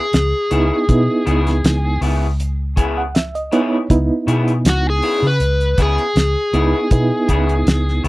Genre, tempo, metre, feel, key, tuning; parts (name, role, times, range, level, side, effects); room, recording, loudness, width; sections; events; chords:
straight-eighth soul blues; 80 BPM; 4/4; swing 53% on 16ths; C# minor; A4 = 440 Hz
overdriven slide guitar; melody; 0.0-8.0 s; F#4 to B4; -20 LUFS; left 1 dB
vintage muted fingered electric bass; bass; 0.1-8.1 s; C#2 to C#3; -18 LUFS; equal
cloth-damped thuddy drum kit; drums; 0.1-8.1 s; hi-hat, kick drum, snare drum; -17 LUFS; equal
mellow reed electric piano; accompaniment; 0.5-8.1 s; B3 to G#5; -19 LUFS; right 2 dB; fast tremolo
electric guitar through a small old amp; stabs; 0.5-8.1 s; C#3 to G#4; -23 LUFS; left 3 dB; wide subtle chorus
little or no reverb; dry, close 1970s-style studio recording; -14 LUFS; side -19 dB against mid
0.0-8.1 A section
electric slide guitar solo 0.0-8.1; reed electric piano fill 2.4-3.9
0.0 C#m7